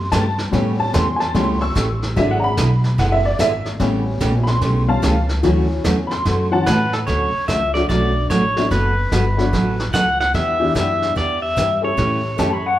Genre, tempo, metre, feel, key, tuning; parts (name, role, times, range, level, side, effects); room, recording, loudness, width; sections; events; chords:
country, western swing; 147 BPM; 4/4; swing 65% on 8ths; D major; A4 = 440 Hz
honky-tonk upright piano; accompaniment; 0.0-12.6 s; E3 to E6; -21 LUFS; left 2 dB
upright bass; bass; 0.0-12.8 s; F#1 to A2; -21 LUFS; equal
picked steel-string acoustic guitar; accompaniment; 0.1-12.5 s; C#3 to A4; -23 LUFS; right 2 dB
vintage brush drum kit; drums; 0.1-12.8 s; brushed snare drum, hi-hat, kick drum, snare drum; -26 LUFS; equal
pedal steel guitar; melody; 6.7-12.8 s; A4 to F#5; -20 LUFS; equal
clean lap steel guitar; second line; 12.4-12.8 s; F#5 to B5; -19 LUFS; left 3 dB
wet large studio reverb, RT60 1.4 s; band playing live in one room; -16 LUFS; side -13 dB against mid
0.0-7.1 A section; 7.1-12.8 B section
honky-tonk piano solo 0.0-7.1
0.0 A7; 2.2 E7/G#; 3.8 A7; 5.4 Dmaj7; 8.7 Bm7; 10.3 Em7; 12.0 A7